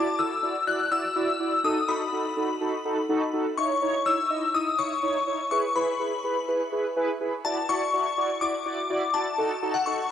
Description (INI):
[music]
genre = pop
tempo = 124 BPM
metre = 4/4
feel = straight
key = unclear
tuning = A4 = 442 Hz
[part]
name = shimmering bell with halo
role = melody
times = 0.0-10.1 s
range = F#5 to F#6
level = -26 LUFS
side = left 4 dB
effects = ensemble chorus, shimmer reverb, tape echo
[part]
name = mellow synth brass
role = accompaniment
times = 0.0-10.0 s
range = D#4 to D#5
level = -27 LUFS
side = right 2 dB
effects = chorus, cassette tape, shimmer reverb
[sound]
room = wet booth ambience, RT60 0.2 s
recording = home recording on cassette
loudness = -24 LUFS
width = side -9 dB against mid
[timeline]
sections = 0.0-10.1 A section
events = none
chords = 0.0 Dadd9; 1.6 D#dim; 3.6 C#madd9; 5.5 E; 7.4 Dadd9; 9.4 D#dim